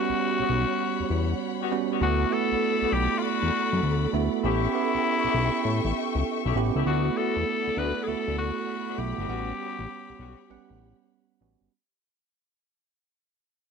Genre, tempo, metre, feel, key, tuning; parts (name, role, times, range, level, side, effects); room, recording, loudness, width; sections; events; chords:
R&B; 99 BPM; 4/4; swing 66% on 16ths; D major; A4 = 440 Hz
breathy tenor saxophone; melody; 0.0-11.1 s; E4 to B4; -28 LUFS; left 4 dB; slapback echo
bell-like tine electric piano; accompaniment; 0.0-11.7 s; G3 to F#5; -29 LUFS; right 15 dB
warm studio string section; sustained chords; 0.0-11.7 s; G3 to C#6; -34 LUFS; left 4 dB
fat analog bass; bass; 0.1-11.7 s; G1 to A2; -27 LUFS; left 2 dB
mellow horn section; stabs; 0.4-10.4 s; G3 to G4; -33 LUFS; left 16 dB
light reverb; dry, close 1970s-style studio recording; -24 LUFS; side -6 dB against mid
0.0-6.9 A section; 6.9-11.7 B section
fade-out 6.9-11.7
0.0 A13 (rootless); 2.0 D6; 4.4 A7; 6.9 D6; 9.3 A13